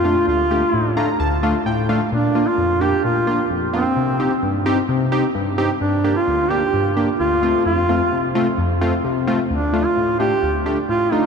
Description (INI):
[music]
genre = pop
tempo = 130 BPM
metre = 4/4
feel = straight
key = unclear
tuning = A4 = 440 Hz
[part]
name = warm duduk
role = melody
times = 0.0-11.3 s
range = C4 to G4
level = -19 LUFS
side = right 1 dB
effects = ping-pong delay
[part]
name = warm analog keys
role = accompaniment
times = 0.0-11.2 s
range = D2 to Bb5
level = -19 LUFS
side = left 1 dB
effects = chorus
[sound]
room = wet cathedral reverb, RT60 6.0 s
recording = dreamy mix soaked in reverb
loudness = -16 LUFS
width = side -6 dB against mid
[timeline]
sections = 0.0-11.3 A section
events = synth keys fill 0.7-2.1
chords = 0.0 Dm; 2.1 Bb; 4.0 Cm; 5.8 Gm; 7.4 F; 9.5 Dm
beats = | 0.27 0.73 1.20 1.66 | 2.12 2.58 3.04 3.50 | 3.96 4.43 4.89 5.35 | 5.81 6.27 6.73 7.20 | 7.66 8.12 8.58 9.04 | 9.50 9.96 10.43 10.89